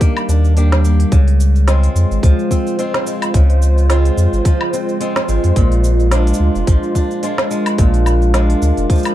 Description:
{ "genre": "folktronica", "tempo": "108 BPM", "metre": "4/4", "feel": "swing 56% on 16ths", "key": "unclear", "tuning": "A4 = 439 Hz", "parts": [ { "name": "warbly tape-like pad", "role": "sustained chords", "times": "0.0-9.1 s", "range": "Eb3 to C5", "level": "-22 LUFS", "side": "right 1 dB", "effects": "chorus, built-in reverb, vintage 12-bit sampler grit" }, { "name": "fingerpicked swing-style acoustic guitar", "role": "arpeggios", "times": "0.0-9.1 s", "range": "Bb2 to G4", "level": "-20 LUFS", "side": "equal", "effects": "tape echo" }, { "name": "electronic kick drum", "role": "drums", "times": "0.0-9.0 s", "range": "none", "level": "-13 LUFS", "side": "equal", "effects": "none" }, { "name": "organic electronic drum kit", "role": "drums", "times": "0.0-9.1 s", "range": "cabasa, hi-hat, snare drum, woodblock", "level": "-22 LUFS", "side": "equal", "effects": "none" }, { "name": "warm sub bass", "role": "bass", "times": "0.3-8.9 s", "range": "F1 to F2", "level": "-12 LUFS", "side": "equal", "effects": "none" } ], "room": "light reverb", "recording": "dark, warm production", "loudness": "-12 LUFS", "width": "side -13 dB against mid", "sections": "0.0-9.1 A section", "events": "none", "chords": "0.0 Ebmaj7; 1.1 Dbmaj7; 5.6 Bb7" }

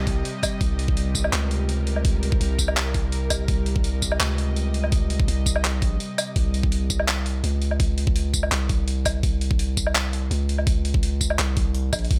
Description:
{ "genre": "half-time drum and bass", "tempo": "167 BPM", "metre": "4/4", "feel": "half-time", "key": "C phrygian", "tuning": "A4 = 440 Hz", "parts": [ { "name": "bowed-like drone", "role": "sustained chords", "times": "0.0-6.3 s", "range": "C3 to Eb5", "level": "-35 LUFS", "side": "equal", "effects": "built-in reverb, sidechain pumping" }, { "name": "long sustained 808-style bass", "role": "bass", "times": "0.0-12.2 s", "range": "Bb1 to Db2", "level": "-26 LUFS", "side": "equal", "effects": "none" }, { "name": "boom bap sampler-style drum kit", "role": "drums", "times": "0.1-12.2 s", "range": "handclaps, hi-hat, tambourine, woodblock", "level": "-29 LUFS", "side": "equal", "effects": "none" }, { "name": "electronic kick drum", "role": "drums", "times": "0.1-12.2 s", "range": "none", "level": "-26 LUFS", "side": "equal", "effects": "overdrive" } ], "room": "little or no reverb", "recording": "none", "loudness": "-23 LUFS", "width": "mono", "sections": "0.0-6.4 A section; 6.4-12.2 A section", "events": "drop 0.0-6.4, 6.4-12.2; break 6.0-6.4", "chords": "0.0 C5" }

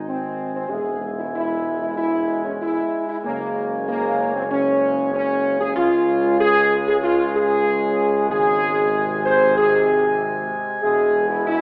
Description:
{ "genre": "classical", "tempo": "95 BPM", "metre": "4/4", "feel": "straight", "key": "unclear", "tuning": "A4 = 440 Hz", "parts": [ { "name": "dark trumpet section", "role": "melody", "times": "0.0-11.6 s", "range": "Db5 to Ab5", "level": "-29 LUFS", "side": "equal", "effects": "none" }, { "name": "bright trombone section", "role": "sustained chords", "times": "0.0-11.6 s", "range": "G#2 to G#3", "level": "-31 LUFS", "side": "equal", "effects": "none" }, { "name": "mellow French horn section", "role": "sustained chords", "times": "0.0-11.6 s", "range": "Bb3 to C5", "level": "-22 LUFS", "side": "equal", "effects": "none" }, { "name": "warm tuba", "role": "bass", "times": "0.0-11.6 s", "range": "E1 to Db2", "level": "-30 LUFS", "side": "equal", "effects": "none" } ], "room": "wet scoring stage reverb, RT60 1.8 s", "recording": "AM radio sound", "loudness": "-20 LUFS", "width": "mono", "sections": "0.0-11.6 A section", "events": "none", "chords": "0.0 Ab; 0.7 E; 3.3 Gbadd9; 5.8 Db; 8.3 Ab; 10.8 E" }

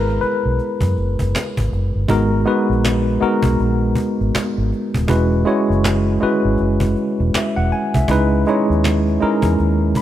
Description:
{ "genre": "R&B, neo-soul", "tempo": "80 BPM", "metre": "4/4", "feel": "swing 60% on 16ths", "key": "unclear", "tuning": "A4 = 440 Hz", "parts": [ { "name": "tine electric piano", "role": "accompaniment", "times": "0.0-10.0 s", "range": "G#3 to B5", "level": "-17 LUFS", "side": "equal", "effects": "fast stereo tremolo" }, { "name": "vintage muted fingered electric bass", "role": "bass", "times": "0.0-9.9 s", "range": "D#1 to F#2", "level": "-19 LUFS", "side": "equal", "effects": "none" }, { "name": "cajon", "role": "drums", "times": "0.1-10.0 s", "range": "none", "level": "-24 LUFS", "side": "equal", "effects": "none" } ], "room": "light reverb, studio ambience", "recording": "bright 1980s-style digital production", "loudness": "-15 LUFS", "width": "side -12 dB against mid", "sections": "0.0-2.1 A section; 2.1-10.0 B section", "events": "tine electric piano solo 0.0-2.1", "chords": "0.0 F#9sus4; 2.1 G#m9; 5.1 E69; 8.1 C#m9" }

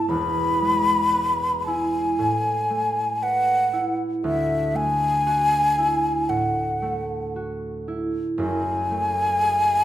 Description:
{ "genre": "classical, impressionist duo for flute and harp", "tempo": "58 BPM", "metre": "4/4", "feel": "rubato", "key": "D major", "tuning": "A4 = 441 Hz", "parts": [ { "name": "mellow hollow concert flute", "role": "melody", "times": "0.0-9.8 s", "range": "E5 to B5", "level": "-21 LUFS", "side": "left 1 dB", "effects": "none" }, { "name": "concert harp", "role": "accompaniment", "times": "0.0-9.8 s", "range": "E1 to C5", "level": "-26 LUFS", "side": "right 2 dB", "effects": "none" } ], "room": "wet recital hall reverb, RT60 1.7 s", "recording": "none", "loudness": "-20 LUFS", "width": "side -12 dB against mid", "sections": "0.0-9.8 A section", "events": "none", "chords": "0.1 E; 2.2 Asus2; 4.2 Dadd9; 8.4 F#m9" }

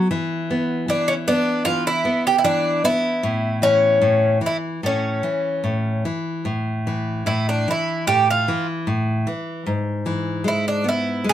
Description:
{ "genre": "fado-style ballad", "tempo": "76 BPM", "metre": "4/4", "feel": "rubato", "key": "unclear", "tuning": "A4 = 441 Hz", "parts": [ { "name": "nylon-string guitar", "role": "accompaniment", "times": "0.0-11.3 s", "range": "G#2 to B3", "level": "-22 LUFS", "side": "left 1 dB", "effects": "none" }, { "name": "Irish bouzouki", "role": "melody", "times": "0.9-11.3 s", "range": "C#4 to G#4", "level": "-19 LUFS", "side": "equal", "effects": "none" } ], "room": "moderate studio ambience, RT60 0.5 s", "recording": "none", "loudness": "-18 LUFS", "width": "side -11 dB against mid", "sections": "0.0-11.3 A section", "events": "none", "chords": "0.1 E5; 3.2 A5; 9.7 E/G#" }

